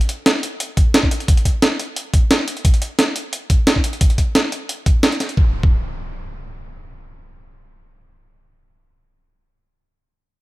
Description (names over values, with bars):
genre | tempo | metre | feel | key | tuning
liquid drum and bass | 176 BPM | 4/4 | straight | none | none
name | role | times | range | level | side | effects
breakbeat sampler-style drum kit | drums | 0.0-5.4 s | hi-hat, snare drum | -17 LUFS | right 1 dB | small room ambience
electronic kick drum | drums | 0.8-5.7 s | none | -15 LUFS | equal | small room ambience
impact | sound effects | 5.4-9.2 s | none | -31 LUFS | equal | none
room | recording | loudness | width
little or no reverb | none | -15 LUFS | side -19 dB against mid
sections
0.0-5.4 A section; 5.4-8.1 B section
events
none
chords
none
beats
0.26 0.60 0.94 | 1.28 1.62 1.96 2.31 | 2.65 2.99 3.33 3.67 | 4.01 4.35 4.69 5.03 | 5.37 5.71 6.05 6.40 | 6.74 7.08 7.42 7.76